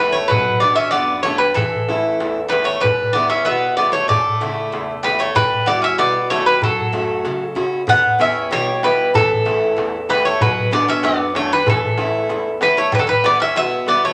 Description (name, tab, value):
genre	greek folk, Greek bouzouki band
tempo	95 BPM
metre	2/4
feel	straight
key	unclear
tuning	A4 = 440 Hz
part	Greek bouzouki	melody	0.0-14.1 s	A4 to F#5	-19 LUFS	equal	none
part	Greek bouzouki	second line	0.0-14.1 s	E3 to C#4	-25 LUFS	equal	none
part	picked steel-string acoustic guitar	accompaniment	0.0-14.1 s	E2 to G4	-27 LUFS	equal	none
part	darbuka	percussion	0.0-14.0 s	none	-26 LUFS	equal	none
room	wet studio reverb, RT60 0.5 s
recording	none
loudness	-17 LUFS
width	mono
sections	0.0-5.4 A section; 5.4-14.1 A section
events	none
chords	0.3 Bmadd9; 1.6 A; 2.8 Em; 4.1 A; 5.4 Emadd9; 6.6 F#m; 7.9 Em; 9.1 A; 10.4 Bmadd9; 11.7 A; 12.9 Em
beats	| 0.31 0.94 | 1.57 2.20 | 2.83 3.46 | 4.09 4.72 | 5.36 5.99 | 6.62 7.25 | 7.88 8.51 | 9.14 9.77 | 10.40 11.03 | 11.66 12.29 | 12.92 13.55